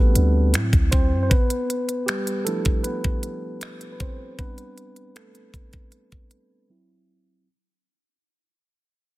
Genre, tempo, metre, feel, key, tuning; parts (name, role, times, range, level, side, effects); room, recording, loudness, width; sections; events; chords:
contemporary R&B; 78 BPM; 4/4; straight; A minor; A4 = 442 Hz
mellow tine electric piano; accompaniment; 0.0-7.5 s; F3 to C5; -26 LUFS; right 1 dB; low-pass filter
warm 808-style bass; bass; 0.0-1.3 s; A1 to A2; -19 LUFS; equal
trap drum kit; drums; 0.2-6.5 s; finger snaps, hi-hat, kick drum; -22 LUFS; equal; soft clipping on snare
little or no reverb; dense, heavily limited modern master; -19 LUFS; side -19 dB against mid
0.0-7.5 A section
fade-out 0.0-7.5; tine electric piano solo 0.0-7.5; filter sweep on tine electric piano 0.0-7.5; break 6.7-7.5
0.0 Am11; 0.5 D7; 1.3 G13; 4.4 Am11; 6.7 C